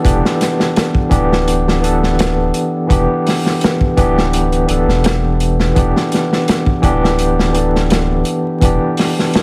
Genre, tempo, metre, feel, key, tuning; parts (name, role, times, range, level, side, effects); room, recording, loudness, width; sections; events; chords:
trip hop; 84 BPM; 4/4; straight; E minor; A4 = 439 Hz
overdriven tine electric piano; accompaniment; 0.0-9.4 s; E3 to A4; -18 LUFS; equal; tremolo, tape echo
round analog bass; bass; 0.0-8.8 s; D1 to E1; -20 LUFS; equal
crunchy breakbeat drum kit; drums; 0.0-9.4 s; hi-hat, kick drum, snare drum; -19 LUFS; equal
light reverb, small room ambience; vinyl crackle; -15 LUFS; mono
0.0-9.4 A section
0.0 Em7